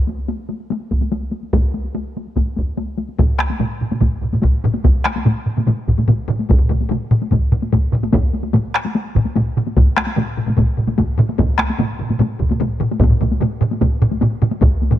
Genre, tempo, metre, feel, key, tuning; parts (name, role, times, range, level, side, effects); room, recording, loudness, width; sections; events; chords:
japanese traditional, taiko drum ensemble; 146 BPM; 4/4; straight
taiko ensemble; percussion; 0.1-15.0 s; -22 LUFS; left 3 dB
taiko ensemble; percussion; 0.9-14.7 s; -18 LUFS; equal
taiko ensemble; percussion; 3.2-15.0 s; -20 LUFS; left 2 dB
taiko ensemble; percussion; 3.2-15.0 s; -20 LUFS; right 4 dB
small room ambience; dry, close 1970s-style studio recording; -15 LUFS; side -12 dB against mid
0.0-3.2 A section; 3.2-15.0 B section
speeding up 0.0-15.0